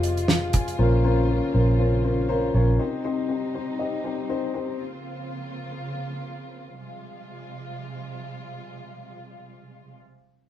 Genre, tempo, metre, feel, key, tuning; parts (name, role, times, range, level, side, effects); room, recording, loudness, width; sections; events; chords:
piano-driven pop; 120 BPM; 4/4; swing 56% on 16ths; F minor; A4 = 441 Hz
dark upright piano; accompaniment; 0.0-4.8 s; Bb2 to Ab5; -25 LUFS; left 3 dB
warm studio string section; sustained chords; 0.0-10.0 s; C3 to F4; -36 LUFS; right 1 dB
vintage muted fingered electric bass; bass; 0.0-2.8 s; F1 to Bb1; -22 LUFS; right 1 dB
damped 70s drum kit; drums; 0.0-0.8 s; hi-hat, kick drum, snare drum; -22 LUFS; right 1 dB
moderate studio reverb, RT60 0.5 s; band playing live in one room; -22 LUFS; side -12 dB against mid
0.0-6.8 A section; 6.8-10.5 B section
0.0 Fmadd9; 0.8 Bbmadd9; 2.8 Cm; 4.8 Bbmadd9; 6.8 Fmadd9